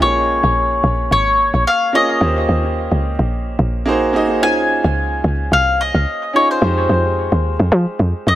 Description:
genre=amapiano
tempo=109 BPM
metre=4/4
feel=swing 55% on 16ths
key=Bb dorian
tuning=A4 = 441 Hz
part: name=mandolin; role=melody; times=0.0-8.4 s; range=C5 to Ab5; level=-17 LUFS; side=left 2 dB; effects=analog delay
part: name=warm baby grand piano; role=accompaniment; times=0.0-8.4 s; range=Ab3 to Eb5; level=-20 LUFS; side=right 2 dB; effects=analog delay
part: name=woody log drum bass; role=bass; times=0.0-8.4 s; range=Ab1 to F3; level=-17 LUFS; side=equal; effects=none
room=light reverb, small room ambience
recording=echo-heavy mix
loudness=-14 LUFS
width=side -14 dB against mid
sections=0.0-8.4 A section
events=none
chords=0.0 Bbm7; 2.2 Eb13; 3.9 Ab7; 4.4 Dbmaj7; 6.6 Fm7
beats=| 0.01 0.56 1.11 1.66 | 2.21 2.76 3.31 3.87 | 4.42 4.96 5.52 6.07 | 6.62 7.17 7.72 8.27

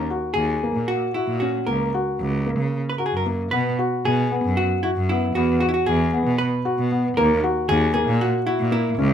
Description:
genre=contemporary instrumental, chamber music in an uneven meter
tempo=230 BPM (eighths)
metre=7/8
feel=straight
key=Eb phrygian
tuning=A4 = 441 Hz
part: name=vintage hollow-body jazz guitar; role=melody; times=0.0-9.1 s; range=Fb4 to Cb5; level=-24 LUFS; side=equal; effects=none
part: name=felt-muted upright piano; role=arpeggios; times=0.0-9.1 s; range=Bb3 to Gb4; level=-24 LUFS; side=left 1 dB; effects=none
part: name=clear cello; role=bass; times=0.0-9.1 s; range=Db2 to Db3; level=-23 LUFS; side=right 1 dB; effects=none
room=light reverb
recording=none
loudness=-19 LUFS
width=side -8 dB against mid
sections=0.0-3.5 A section; 3.5-9.1 B section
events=none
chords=0.0 Ebm7; 1.7 Gb/Db; 3.5 B5; 5.4 Eadd9; 7.2 Ebm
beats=0.11 0.37 0.63 0.89 1.16 1.42 | 1.68 1.94 2.20 2.47 2.73 3.00 3.26 | 3.53 3.79 4.05 4.32 4.58 4.84 5.10 | 5.36 5.62 5.88 6.14 6.40 6.66 6.92 | 7.18 7.44 7.70 7.95 8.21 8.47 8.73 | 8.99

